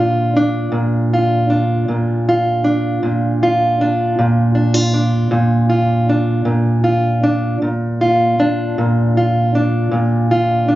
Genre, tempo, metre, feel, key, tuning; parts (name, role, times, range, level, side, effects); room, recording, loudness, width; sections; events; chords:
blues; 52 BPM (dotted quarters); 12/8; straight; Bb major; A4 = 439 Hz
fingerpicked plugged-in steel-string acoustic guitar; solo; 0.0-10.8 s; Bb2 to F4; -13 LUFS; equal
moderate booth ambience, RT60 0.3 s; recorded on a phone in the room, club ambience, compression, nothing above 7.5 kHz; -13 LUFS; side -15 dB against mid
0.0-10.8 A section
0.0 Bb